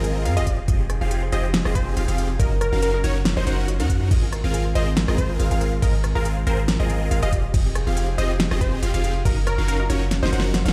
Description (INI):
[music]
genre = future bass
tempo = 140 BPM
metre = 4/4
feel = swing 54% on 16ths, half-time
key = Ab mixolydian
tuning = A4 = 440 Hz
[part]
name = airy breathy pad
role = sustained chords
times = 0.0-10.7 s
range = F3 to Ab4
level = -37 LUFS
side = equal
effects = none
[part]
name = thumb-piano-like synth pluck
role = arpeggios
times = 0.0-10.7 s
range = F4 to Db6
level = -40 LUFS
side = equal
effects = none
[part]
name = unison pluck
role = arpeggios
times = 0.0-10.7 s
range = C5 to Gb5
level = -39 LUFS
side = equal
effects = cassette tape, sidechain pumping, digital delay
[part]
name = supersaw chords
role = riff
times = 0.0-10.7 s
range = C4 to Gb5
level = -30 LUFS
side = equal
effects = phaser, sidechain pumping, digital delay
[part]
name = warm 808-style bass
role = bass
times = 0.0-10.7 s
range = F1 to Ab2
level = -25 LUFS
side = equal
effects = sidechain pumping
[part]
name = pop drum kit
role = drums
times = 0.0-10.7 s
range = crash cymbal, hi-hat, rim click, snare drum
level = -29 LUFS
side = equal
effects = small room ambience
[part]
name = plucky unison lead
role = melody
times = 0.4-10.4 s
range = Bb4 to Eb5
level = -32 LUFS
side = equal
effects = sidechain pumping, digital delay
[part]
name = electronic kick drum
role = drums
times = 0.5-9.3 s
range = none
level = -24 LUFS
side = equal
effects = small room ambience
[sound]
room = light reverb, digital ambience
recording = played on a big sound system in a bare room, large studio reverb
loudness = -22 LUFS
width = mono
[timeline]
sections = 0.0-10.7 A section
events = drum fill 10.1-10.7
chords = 0.5 Fm9; 2.4 Ebm7/Gb; 4.1 Ab69; 7.3 Fm9; 9.3 Ebm7/Gb